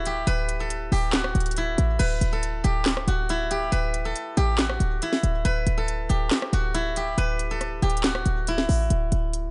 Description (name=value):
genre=hip hop, trap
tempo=139 BPM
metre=4/4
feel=half-time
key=D major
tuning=A4 = 444 Hz
part: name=steel-string zither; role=melody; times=0.0-9.5 s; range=E4 to B4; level=-30 LUFS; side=equal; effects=digital delay
part: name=short 808-style bass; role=bass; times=0.0-9.5 s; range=C#1 to A1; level=-27 LUFS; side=equal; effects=none
part: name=trap drum kit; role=drums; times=0.1-9.4 s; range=crash cymbal, handclaps, hi-hat, rim click, snare drum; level=-29 LUFS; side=equal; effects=none
room=little or no reverb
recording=nothing above 10.6 kHz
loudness=-25 LUFS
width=mono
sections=0.0-2.0 A section; 2.0-9.5 B section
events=none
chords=0.0 D; 8.9 D5